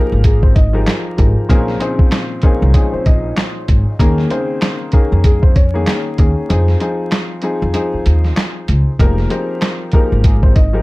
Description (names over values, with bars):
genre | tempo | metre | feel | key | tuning
hip hop, boom-bap hip-hop | 96 BPM | 4/4 | swing 58% on 16ths | F minor | A4 = 440 Hz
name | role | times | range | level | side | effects
dark upright piano | melody | 0.0-10.8 s | Ab3 to Eb5 | -23 LUFS | left 1 dB | high-pass filter, low-pass filter, plate reverb, tape echo
dark grand piano | accompaniment | 0.0-10.8 s | Bb2 to Bb4 | -20 LUFS | left 2 dB | cassette tape, high-pass filter, low-pass filter, plate reverb
upright bass | bass | 0.1-10.8 s | F1 to F2 | -14 LUFS | equal | none
lo-fi sampler-style drum kit | drums | 0.2-10.7 s | handclaps, hi-hat, kick drum, snare drum | -13 LUFS | equal | none
room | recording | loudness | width
little or no reverb | dark, warm production, vinyl crackle | -12 LUFS | side -21 dB against mid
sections
0.0-10.8 A section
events
break 6.5-9.0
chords
0.0 Fm11; 1.5 Bbm11; 4.0 Eb7sus4; 6.5 Dbmaj9/F (rootless); 9.0 Fm11